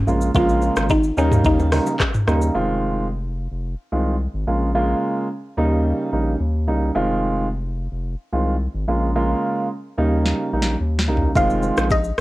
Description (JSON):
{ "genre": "afrobeats", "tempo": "109 BPM", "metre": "4/4", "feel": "straight", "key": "F minor", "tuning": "A4 = 440 Hz", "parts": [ { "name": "mallet-like synth pluck", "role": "melody", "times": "0.0-2.2, 11.4-12.2 s", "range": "Db4 to F5", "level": "-22 LUFS", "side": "left 1 dB", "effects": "chorus, cassette tape" }, { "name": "round analog bass", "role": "bass", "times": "0.0-12.2 s", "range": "F1 to Eb2", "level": "-22 LUFS", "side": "equal", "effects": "none" }, { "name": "dark concert grand piano", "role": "accompaniment", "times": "0.1-11.9 s", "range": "Db3 to F4", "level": "-21 LUFS", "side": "right 2 dB", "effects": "cassette tape" }, { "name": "afro-pop drum kit", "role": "drums", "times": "0.1-2.5, 10.3-12.2 s", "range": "handclaps, hi-hat, kick drum, rim click, shaker, snare drum, toms", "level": "-21 LUFS", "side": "equal", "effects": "cassette tape" }, { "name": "congas and bongos", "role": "percussion", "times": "0.4-2.5, 11.4-12.0 s", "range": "none", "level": "-31 LUFS", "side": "left 5 dB", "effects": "none" } ], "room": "light reverb", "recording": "home recording on cassette", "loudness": "-18 LUFS", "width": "side -18 dB against mid", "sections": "0.0-2.5 A section; 2.5-11.4 B section", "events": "drum fill 10.3-11.4", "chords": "0.1 Bbm7; 1.2 Eb7; 2.5 Fm7; 4.5 Bbm7; 5.6 Eb7; 7.0 Fm7; 8.9 Bbm7; 10.0 Eb7; 11.4 Fm7" }